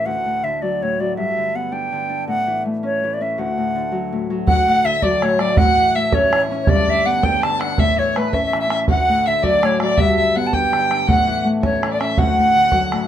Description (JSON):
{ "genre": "celtic folk, Celtic jig", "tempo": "109 BPM (dotted quarters)", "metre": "6/8", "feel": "straight", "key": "D major", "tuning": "A4 = 440 Hz", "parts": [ { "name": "bright wooden flute", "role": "melody", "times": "0.0-12.8 s", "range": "B4 to A5", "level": "-18 LUFS", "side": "right 1 dB", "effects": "none" }, { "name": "Celtic harp", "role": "accompaniment", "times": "0.0-13.1 s", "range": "D2 to E4", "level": "-22 LUFS", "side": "left 3 dB", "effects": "none" }, { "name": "dark fiddle", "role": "second line", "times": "4.5-13.1 s", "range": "B4 to A5", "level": "-24 LUFS", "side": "left 2 dB", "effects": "none" }, { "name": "bodhran", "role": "percussion", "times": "4.5-13.0 s", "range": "none", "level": "-20 LUFS", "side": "right 2 dB", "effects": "none" } ], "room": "moderate small room reverb, RT60 0.5 s", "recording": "minimal, uncompressed stereo recording", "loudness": "-15 LUFS", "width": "side -10 dB against mid", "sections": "0.0-4.5 A section; 4.5-13.1 A section", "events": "none", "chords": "0.1 D; 1.2 G; 2.3 A; 3.4 D; 5.6 A; 6.7 G; 7.8 A; 8.9 D; 10.0 G; 11.1 A; 12.2 D" }